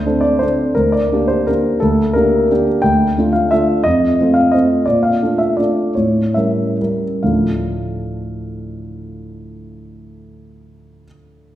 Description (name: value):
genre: classical, piano waltz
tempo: 123-188 BPM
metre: 3/4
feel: rubato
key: D minor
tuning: A4 = 440 Hz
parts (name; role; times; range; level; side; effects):
- warm grand piano; solo; 0.0-11.6 s; D2 to G5; -14 LUFS; equal; none
room: wet recital hall reverb, RT60 1.6 s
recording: heard from further back in the room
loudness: -13 LUFS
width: side -13 dB against mid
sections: 0.0-7.2 A section; 7.2-9.8 B section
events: slowing down 4.4-7.2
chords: 0.0 D7(no3); 0.8 Gm/D; 2.8 Dm; 3.9 F7; 4.9 Bbmaj7; 6.0 A7b9; 7.2 Dm